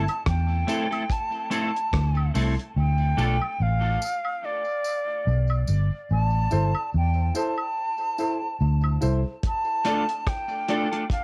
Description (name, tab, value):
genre	dub reggae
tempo	72 BPM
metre	4/4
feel	swing 56% on 16ths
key	D dorian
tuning	A4 = 441 Hz
part	silver concert flute	melody	0.0-11.2 s	D5 to A5	-31 LUFS	equal	tape echo, plate reverb
part	clean electric guitar	accompaniment	0.0-3.4, 9.8-11.0 s	A3 to A4	-32 LUFS	equal	ensemble chorus, high-pass filter, cassette tape, tape echo, plate reverb
part	vintage muted fingered electric bass	bass	0.0-9.2 s	G1 to E2	-24 LUFS	equal	none
part	damped 70s drum kit	drums	0.1-2.8, 9.4-11.2 s	hi-hat, kick drum, rim click	-30 LUFS	equal	none
part	woodblock and tambourine	percussion	0.1-10.1 s	none	-39 LUFS	equal	high-pass filter on perc, tape echo
part	dark upright piano	stabs	6.5-10.8 s	E4 to D5	-34 LUFS	equal	high-pass filter, cassette tape, tape echo
room	light reverb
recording	home recording on cassette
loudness	-25 LUFS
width	mono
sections	0.0-11.2 A section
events	break 0.0-6.1; part muted 2.8-9.4, 9.4-11.2; filter sweep 9.4-11.2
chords	0.0 Am; 2.8 Dm; 6.1 Am; 9.4 Dm